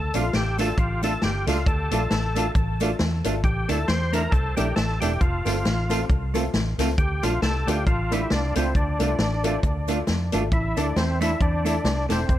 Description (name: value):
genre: ska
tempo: 136 BPM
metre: 4/4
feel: swing 57% on 8ths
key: D minor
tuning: A4 = 440 Hz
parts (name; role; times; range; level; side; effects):
- overdriven tonewheel organ; melody; 0.0-12.4 s; C4 to C5; -28 LUFS; left 1 dB; chorus vibrato, tape echo
- vintage muted fingered electric bass; bass; 0.0-12.4 s; E1 to F2; -26 LUFS; equal; none
- hollow-body jazz guitar; accompaniment; 0.1-12.2 s; A3 to F4; -29 LUFS; right 6 dB; none
- dark upright piano; stabs; 0.1-12.2 s; A3 to A4; -31 LUFS; left 4 dB; tape echo
- vintage drum kit; drums; 0.1-12.4 s; hi-hat, kick drum, snare drum; -26 LUFS; equal; none
- cabasa; percussion; 0.1-12.4 s; none; -43 LUFS; left 4 dB; tape echo
room: light reverb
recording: none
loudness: -21 LUFS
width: side -13 dB against mid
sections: 0.0-12.4 A section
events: none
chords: 0.0 Dm; 3.4 Asus4; 5.2 F; 7.0 Dm; 10.5 Asus4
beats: 0.33 0.78 1.22 | 1.66 2.11 2.55 2.99 | 3.44 3.88 4.32 4.76 | 5.21 5.65 6.09 6.54 | 6.98 7.42 7.86 8.31 | 8.75 9.19 9.63 10.08 | 10.52 10.96 11.40 11.85 | 12.29